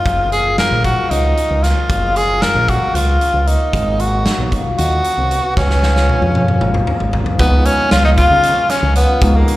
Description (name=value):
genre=progressive instrumental, band music in an uneven meter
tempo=229 BPM (eighths)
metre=7/8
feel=straight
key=Db mixolydian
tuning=A4 = 442 Hz
part: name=bright tenor saxophone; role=melody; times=0.0-9.6 s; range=Bb3 to Bb4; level=-16 LUFS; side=equal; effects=slapback echo, tape echo
part: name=cimbalom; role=arpeggios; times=0.0-9.6 s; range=Bb3 to Ab4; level=-23 LUFS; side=left 3 dB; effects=slapback echo, tape echo
part: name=picked electric bass with an envelope filter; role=bass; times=0.1-9.4 s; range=Gb1 to Db3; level=-16 LUFS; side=equal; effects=none
part: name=big rock drum kit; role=drums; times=0.1-9.6 s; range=hi-hat, kick drum, snare drum, toms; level=-19 LUFS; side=equal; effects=none
part: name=dark grand piano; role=accompaniment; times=7.4-9.6 s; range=F3 to Eb4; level=-22 LUFS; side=right 1 dB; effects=none
room=light reverb, small room ambience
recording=live gig heard through the venue's PA, club reverb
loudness=-12 LUFS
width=side -16 dB against mid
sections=0.0-7.4 A section; 7.4-9.6 B section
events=drum fill 5.6-7.4; tenor saxophone solo 7.4-9.6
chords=0.1 Gbmaj9; 3.7 Abm7; 5.6 Db; 7.4 Db7